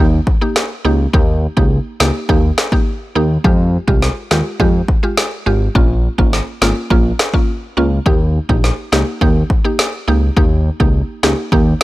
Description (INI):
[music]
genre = dancehall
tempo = 104 BPM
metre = 4/4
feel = straight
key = Eb mixolydian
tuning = A4 = 440 Hz
[part]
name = mallet-like synth pluck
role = accompaniment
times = 0.0-11.7 s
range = Ab3 to G4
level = -19 LUFS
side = right 1 dB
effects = chorus
[part]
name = fat analog bass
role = bass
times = 0.0-11.7 s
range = Ab1 to F2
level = -15 LUFS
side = equal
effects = none
[part]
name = deep house drum kit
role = drums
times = 0.3-11.8 s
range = kick drum, snare drum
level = -15 LUFS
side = equal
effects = none
[sound]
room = little or no reverb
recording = dry, gritty hardware recording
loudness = -12 LUFS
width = side -17 dB against mid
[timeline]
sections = 0.0-11.8 A section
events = break 0.0-8.1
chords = 0.0 Eb; 3.4 Fmadd9; 5.8 Bbm; 8.1 Eb